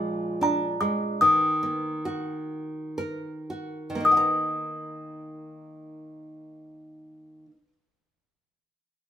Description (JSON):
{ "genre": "children's music, lullaby", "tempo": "53-80 BPM", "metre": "3/4", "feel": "straight", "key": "Eb harmonic minor", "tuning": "A4 = 440 Hz", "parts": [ { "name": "music box", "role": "melody", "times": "0.0-7.6 s", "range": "Bb5 to Eb6", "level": "-22 LUFS", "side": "left 1 dB", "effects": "none" }, { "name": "nylon-string guitar", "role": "accompaniment", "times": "0.0-7.7 s", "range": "Bb2 to Bb5", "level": "-31 LUFS", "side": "right 2 dB", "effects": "none" } ], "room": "light reverb", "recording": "band playing live in one room", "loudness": "-23 LUFS", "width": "side -9 dB against mid", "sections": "0.0-4.0 A section; 4.0-9.1 B section", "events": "slowing down 0.0-4.0", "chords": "0.0 Bb7; 1.2 Ebm" }